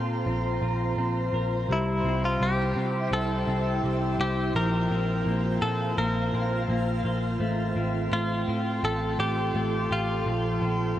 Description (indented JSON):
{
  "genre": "dream pop",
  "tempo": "84 BPM",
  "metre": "4/4",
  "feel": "straight",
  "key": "unclear",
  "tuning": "A4 = 436 Hz",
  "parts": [
    { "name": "direct-recorded clean electric guitar", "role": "melody", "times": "0.0-11.0 s", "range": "E4 to Bb4", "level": "-31 LUFS", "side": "left 1 dB", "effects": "ping-pong delay" },
    { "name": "ethereal airy pad", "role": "sustained chords", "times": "0.0-11.0 s", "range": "E4 to C6", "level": "-31 LUFS", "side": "right 1 dB", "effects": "ensemble chorus, built-in reverb" },
    { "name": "clean electric guitar", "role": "arpeggios", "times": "0.0-11.0 s", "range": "F3 to Bb4", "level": "-30 LUFS", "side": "left 2 dB", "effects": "lush chorus, ping-pong delay" },
    { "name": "vintage muted picked electric bass", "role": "bass", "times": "0.0-10.9 s", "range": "A1 to C3", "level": "-29 LUFS", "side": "equal", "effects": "none" },
    { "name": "twinkling granular texture", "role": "texture", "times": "2.8-7.3 s", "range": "E5 to F5", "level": "-42 LUFS", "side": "right 2 dB", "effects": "built-in reverb, ping-pong delay" }
  ],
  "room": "moderate shimmer reverb, RT60 6.0 s",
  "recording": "worn, warbling old tape, cassette tape, warbly pitch drift",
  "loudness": "-24 LUFS",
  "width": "side -12 dB against mid",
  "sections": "0.0-11.0 A section",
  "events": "none",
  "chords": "0.0 Bbsus2; 1.7 C; 4.5 Bbsus2; 7.4 Fadd9/A; 10.3 Bbsus2",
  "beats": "0.26 0.98 | 1.69 2.41 3.12 3.83 | 4.55 5.26 5.98 6.69 | 7.41 8.12 8.83 9.55 | 10.26 10.98"
}